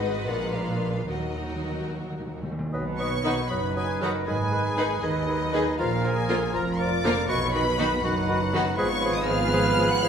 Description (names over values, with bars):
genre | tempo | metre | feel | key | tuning
classical | 72-81 BPM (dotted quarters) | 6/8 | rubato | unclear | A4 = 440 Hz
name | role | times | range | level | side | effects
clear studio violin section | melody | 0.0-10.1 s | Eb5 to Gb6 | -32 LUFS | left 3 dB | none
clear symphonic violin section | second line | 0.0-10.1 s | Cb4 to Cb5 | -33 LUFS | left 2 dB | none
warm studio viola section | accompaniment | 0.0-10.1 s | D3 to Eb4 | -32 LUFS | right 1 dB | none
mellow French horn section | sustained chords | 0.0-10.1 s | F3 to Cb5 | -34 LUFS | left 3 dB | none
rich symphonic cello section | bass | 0.0-10.1 s | Eb2 to B2 | -32 LUFS | right 2 dB | none
rich symphonic double bass section | bass | 0.0-10.1 s | F1 to Eb2 | -32 LUFS | right 3 dB | none
timpani | percussion | 1.1-2.7 s | Eb3 | -35 LUFS | left 1 dB | none
clear clarinet | second line | 2.7-10.1 s | F4 to B4 | -34 LUFS | left 3 dB | none
warm cor anglais | second line | 2.7-10.1 s | Bb4 to D#5 | -35 LUFS | right 1 dB | none
dark bassoon | accompaniment | 2.7-10.1 s | D#3 to F#3 | -33 LUFS | right 2 dB | none
mellow trumpet section | stabs | 2.7-10.1 s | Bb4 to B4 | -30 LUFS | right 1 dB | none
mellow flute section | second line | 3.0-10.1 s | Eb4 to Gb5 | -32 LUFS | right 2 dB | none
room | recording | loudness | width
wet scoring stage reverb, RT60 1.5 s | none | -23 LUFS | side -7 dB against mid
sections
0.0-2.7 A section; 2.7-10.1 B section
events
timpani fill 1.1-2.7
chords
0.3 Bb7b9; 1.1 Ebm; 2.7 B; 4.3 Abm; 5.8 Bb; 7.3 B; 8.8 Fdim/Ab